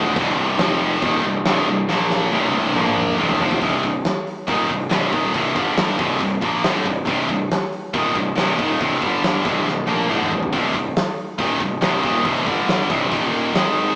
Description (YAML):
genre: heavy metal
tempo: 139 BPM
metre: 4/4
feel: straight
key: C minor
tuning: A4 = 438 Hz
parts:
  - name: heavy high-gain guitar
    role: riff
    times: 0.0-14.0 s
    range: C2 to Bb3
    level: -22 LUFS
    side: left 1 dB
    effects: distortion
  - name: scooped high-gain guitar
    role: riff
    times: 0.0-14.0 s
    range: C2 to Bb3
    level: -22 LUFS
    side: equal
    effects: distortion
  - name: fuzz picked electric bass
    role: bass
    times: 0.0-13.9 s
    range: C1 to Bb1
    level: -24 LUFS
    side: equal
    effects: overdrive
  - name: big rock drum kit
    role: drums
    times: 0.2-13.9 s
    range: china cymbal, crash cymbal, hi-hat, kick drum, snare drum, toms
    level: -23 LUFS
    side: equal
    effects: none
room: light reverb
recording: band playing live in one room, small speaker sound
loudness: -17 LUFS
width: side -27 dB against mid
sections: 0.0-3.6 A section; 3.6-14.0 B section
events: drum fill 1.9-3.6, 9.7-10.5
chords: 0.0 C5; 0.6 F5; 1.0 Cm; 1.9 Bb5; 2.3 C5; 2.8 Bb5; 3.2 C5; 3.6 Cm; 5.6 G5; 6.0 Cm; 9.0 G5; 9.4 Cm; 12.5 G5; 12.9 C5; 13.1 Eb5